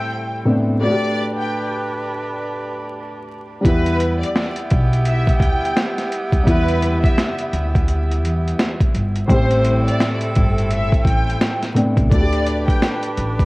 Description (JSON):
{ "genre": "hip hop, boom-bap hip-hop", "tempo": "85 BPM", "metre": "4/4", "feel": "swing 61% on 16ths", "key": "E minor", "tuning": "A4 = 441 Hz", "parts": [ { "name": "warm studio violin section", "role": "melody", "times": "0.0-13.0 s", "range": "B4 to G5", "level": "-24 LUFS", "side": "equal", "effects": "tape echo" }, { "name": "dark upright piano", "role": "accompaniment", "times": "0.0-13.4 s", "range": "A2 to G4", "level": "-22 LUFS", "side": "equal", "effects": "none" }, { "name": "bright saxophone section", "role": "stabs", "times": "0.0-13.4 s", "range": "B3 to B4", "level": "-27 LUFS", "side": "right 2 dB", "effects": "tape echo" }, { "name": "upright bass", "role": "bass", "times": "3.6-13.4 s", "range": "G1 to E2", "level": "-20 LUFS", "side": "equal", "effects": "none" }, { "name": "boom bap sampler-style drum kit", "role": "drums", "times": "3.6-13.4 s", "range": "hi-hat, kick drum, snare drum", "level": "-18 LUFS", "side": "equal", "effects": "overdrive, vintage 12-bit sampler grit" } ], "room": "light reverb, small room ambience", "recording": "worn, warbling old tape, cassette tape, vinyl crackle, warbly pitch drift", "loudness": "-16 LUFS", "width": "side -22 dB against mid", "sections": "0.0-13.4 A section", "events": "none", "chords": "0.0 Am7; 0.8 Dsus4; 3.6 Em; 9.3 Am7; 12.1 Dsus4" }